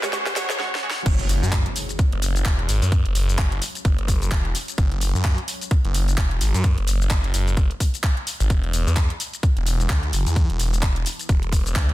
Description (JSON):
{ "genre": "bass house", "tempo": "129 BPM", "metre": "4/4", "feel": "swing 58% on 16ths", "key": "unclear", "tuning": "A4 = 440 Hz", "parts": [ { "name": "deep dark ambient pad", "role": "sustained chords", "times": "0.0-11.9 s", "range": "E4 to F#5", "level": "-43 LUFS", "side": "equal", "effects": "none" }, { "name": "orchestra-hit-like synth stab", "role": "stabs", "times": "0.0-1.0 s", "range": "G#3 to C#5", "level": "-29 LUFS", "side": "right 3 dB", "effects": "built-in reverb, sidechain pumping, digital delay" }, { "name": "garage drum kit", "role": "drums", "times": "0.0-11.9 s", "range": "crash cymbal, handclaps, hi-hat, shaker, snare drum", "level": "-27 LUFS", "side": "equal", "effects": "overdrive, studio reverb" }, { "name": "riser, swell and impact", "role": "sound effects", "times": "0.0-2.9 s", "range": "none", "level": "-30 LUFS", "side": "equal", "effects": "none" }, { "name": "warbly tape-like pad", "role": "texture", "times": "0.0-0.6 s", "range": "C#4 to F#5", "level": "-47 LUFS", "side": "equal", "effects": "none" }, { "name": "phased detuned saw bass", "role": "bass", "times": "0.4-11.9 s", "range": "E1 to F#2", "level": "-21 LUFS", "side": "equal", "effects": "phaser, sidechain pumping, high-pass filter" }, { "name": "electronic kick drum", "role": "drums", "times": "1.1-11.9 s", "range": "none", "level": "-20 LUFS", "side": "equal", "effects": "overdrive, studio reverb" } ], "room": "digital ambience", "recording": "dense, heavily limited modern master, high-pass filter", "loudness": "-19 LUFS", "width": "side -16 dB against mid", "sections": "0.0-1.1 A section; 1.1-11.9 B section", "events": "build-up 0.0-1.1; drum fill 0.0-0.6, 0.6-1.1; riser 0.0-0.6; swell 0.1-1.1; drop 1.1-11.9; impact 1.1-2.9", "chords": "0.0 F#sus2; 8.5 Esus2" }